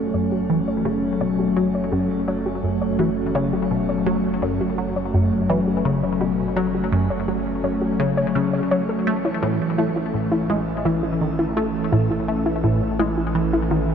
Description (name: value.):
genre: ambient, sequencer-driven space music.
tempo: 84 BPM.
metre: 4/4.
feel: straight.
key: F# minor.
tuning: A4 = 440 Hz.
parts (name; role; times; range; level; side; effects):
phased analog pad; sustained chords; 0.0-13.9 s; E3 to A4; -22 LUFS; equal; phaser, chorus, shimmer reverb.
analog drone; bass; 0.1-13.9 s; F#1 to A1; -33 LUFS; equal; chorus.
soft round pluck; arpeggios; 0.1-13.8 s; E4 to E6; -27 LUFS; left 1 dB; chorus, auto-pan, ping-pong delay, shimmer reverb.
tight sequenced synth; riff; 0.1-13.9 s; F#2 to A3; -23 LUFS; equal; chorus, phaser, ping-pong delay, shimmer reverb.
room: wet huge ambient reverb, RT60 7.7 s.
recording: dark, warm production.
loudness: -19 LUFS.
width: side -7 dB against mid.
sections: 0.0-13.9 A section.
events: fade-in on synth drone 0.0-13.9.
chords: 0.0 F#m; 9.1 A.